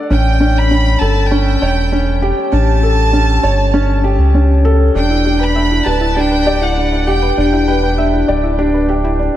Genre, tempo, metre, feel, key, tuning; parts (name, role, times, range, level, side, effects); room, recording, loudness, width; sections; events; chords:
piano and strings electronica; 99 BPM; 4/4; straight; E dorian; A4 = 439 Hz
felt-muted upright piano; riff; 0.0-9.4 s; C#4 to F#5; -15 LUFS; equal; analog delay
clear chamber violin section; melody; 0.1-8.2 s; F#5 to B5; -20 LUFS; right 1 dB; analog delay
round analog bass; bass; 0.1-9.3 s; D1 to C#2; -14 LUFS; equal
soft round pluck; arpeggios; 5.0-9.3 s; D4 to E5; -21 LUFS; left 2 dB; chorus, analog delay
moderate cathedral reverb, RT60 5.3 s; dreamy mix soaked in reverb; -11 LUFS; side -12 dB against mid
0.0-9.4 A section
0.1 A7; 5.0 Em7